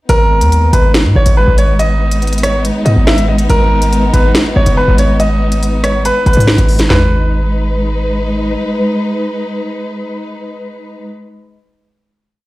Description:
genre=hip hop, drill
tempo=141 BPM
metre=4/4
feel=half-time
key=G# minor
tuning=A4 = 444 Hz
part: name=clear concert grand piano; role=melody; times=0.1-8.1 s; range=A#4 to E5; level=-16 LUFS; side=equal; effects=none
part: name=warm symphonic string section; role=sustained chords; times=0.1-11.1 s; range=G#3 to B4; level=-18 LUFS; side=left 1 dB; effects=none
part: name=hard-hitting 808-style bass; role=bass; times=0.1-8.6 s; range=F#1 to G#2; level=-12 LUFS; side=equal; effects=none
part: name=drill drum kit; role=drums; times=0.1-7.0 s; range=handclaps, hi-hat, rim click, snare drum, toms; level=-16 LUFS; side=equal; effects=none
room=studio reverb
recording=played on a big sound system in a bare room, large studio reverb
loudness=-10 LUFS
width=side -18 dB against mid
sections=0.1-6.9 hook; 6.9-10.3 final chord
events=none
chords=0.1 G#m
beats=| 0.09 0.52 0.94 1.37 | 1.79 2.22 2.65 3.07 | 3.50 3.92 4.35 4.77 | 5.20 5.62 6.05 6.47 | 6.90 7.33 7.75 8.18 | 8.60 9.03 9.45 9.88

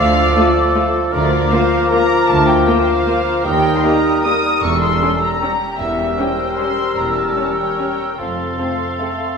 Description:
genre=classical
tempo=153 BPM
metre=3/4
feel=uneven beats, rubato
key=unclear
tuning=A4 = 440 Hz
part: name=muted studio violin section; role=melody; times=0.0-9.4 s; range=D5 to Eb6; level=-21 LUFS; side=left 2 dB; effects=none
part: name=hollow concert flute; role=second line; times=0.0-9.4 s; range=C6 to E6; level=-23 LUFS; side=left 1 dB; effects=none
part: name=mellow clarinet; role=second line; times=0.0-9.4 s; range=C4 to F4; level=-25 LUFS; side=left 2 dB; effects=none
part: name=mellow oboe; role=second line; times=0.0-9.4 s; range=A4 to Bb4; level=-24 LUFS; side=right 1 dB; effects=none
part: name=muted studio violin section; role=second line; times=0.0-9.4 s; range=G4 to F5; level=-25 LUFS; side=left 3 dB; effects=none
part: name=mellow bassoon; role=accompaniment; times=0.0-9.4 s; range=F3 to A3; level=-22 LUFS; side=left 1 dB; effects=none
part: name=muted studio cello section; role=bass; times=0.0-8.5 s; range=D2 to F2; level=-24 LUFS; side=right 2 dB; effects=none
part: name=muted studio double bass section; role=bass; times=0.0-8.5 s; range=E1 to Eb2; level=-24 LUFS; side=right 3 dB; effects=none
part: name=muted studio viola section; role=accompaniment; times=0.4-9.1 s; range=A3 to A4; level=-24 LUFS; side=equal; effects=none
part: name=warm French horn section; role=sustained chords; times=0.4-9.2 s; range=G3 to F4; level=-27 LUFS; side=left 3 dB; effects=none
room=wet recital hall reverb, RT60 1.6 s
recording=recorded in a church or concert hall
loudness=-14 LUFS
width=side -6 dB against mid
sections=0.0-9.4 A section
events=none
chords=0.0 Dm; 1.1 Bb/D; 3.4 Eb; 4.6 Edim7; 8.2 F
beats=0.35 0.75 | 1.13 1.51 1.91 | 2.29 2.67 3.07 | 3.45 3.83 4.24 | 4.62 5.00 5.41 | 5.80 6.18 6.59 | 6.97 7.36 7.78 | 8.18 8.59 9.00

